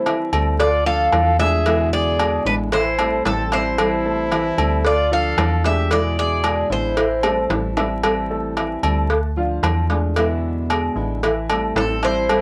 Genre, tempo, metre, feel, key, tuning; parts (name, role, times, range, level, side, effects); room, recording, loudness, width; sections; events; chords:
latin, Cuban son and guajira; 113 BPM; 4/4; straight; A minor; A4 = 440 Hz
Cuban tres; melody; 0.0-7.5, 11.8-12.4 s; A4 to F5; -23 LUFS; equal; cassette tape
clear trumpet; second line; 0.0-7.5, 11.8-12.4 s; C4 to A4; -31 LUFS; equal; cassette tape
nylon-string guitar; accompaniment; 0.0-12.4 s; B2 to F4; -29 LUFS; equal; cassette tape
dark grand piano; arpeggios; 0.0-12.4 s; E3 to E6; -29 LUFS; equal; cassette tape
cowbell and bongos; percussion; 0.1-12.4 s; -25 LUFS; equal
timbales and agogo bells; percussion; 0.1-12.4 s; -27 LUFS; equal
metallic FM bass; bass; 0.3-12.4 s; A1 to E2; -26 LUFS; equal; transformer saturation
moderate booth ambience, RT60 0.2 s; home recording on cassette, vinyl crackle; -19 LUFS; mono
0.0-12.4 A section
drum fill 7.2-8.0
0.0 Am7; 0.6 Dm; 1.7 E7; 2.7 Am7; 4.8 Dm; 5.9 E7; 7.0 Am7; 9.1 Dm; 10.2 E7; 11.2 Am7